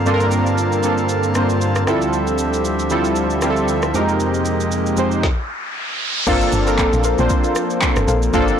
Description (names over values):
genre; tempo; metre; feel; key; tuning
amapiano; 116 BPM; 4/4; swing 55% on 16ths; G dorian; A4 = 440 Hz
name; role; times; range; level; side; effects
warm analog keys; accompaniment; 0.0-8.6 s; F2 to C5; -17 LUFS; right 1 dB; chorus
pipe organ, foundations; sustained chords; 0.0-8.6 s; D2 to A5; -23 LUFS; left 2 dB; sidechain pumping
afro-pop drum kit; drums; 0.1-8.6 s; crash cymbal, handclaps, kick drum, rim click, shaker, snare drum; -22 LUFS; equal; none
riser; sound effects; 5.2-6.3 s; none; -25 LUFS; right 1 dB; none
soft round pluck; stabs; 6.3-8.4 s; A4 to F5; -23 LUFS; left 4 dB; chorus, tape echo
deep log drum bass; bass; 6.3-8.6 s; G1 to Bb1; -20 LUFS; equal; none
room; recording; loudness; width
light reverb; blown-out, overdriven recording, overdrive; -16 LUFS; side -8 dB against mid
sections
0.0-6.3 A section; 6.3-8.6 B section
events
riser 5.2-6.3; stop 5.2-6.3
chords
0.0 Gm11; 1.9 Dm11; 3.9 Fm11; 6.3 Gm11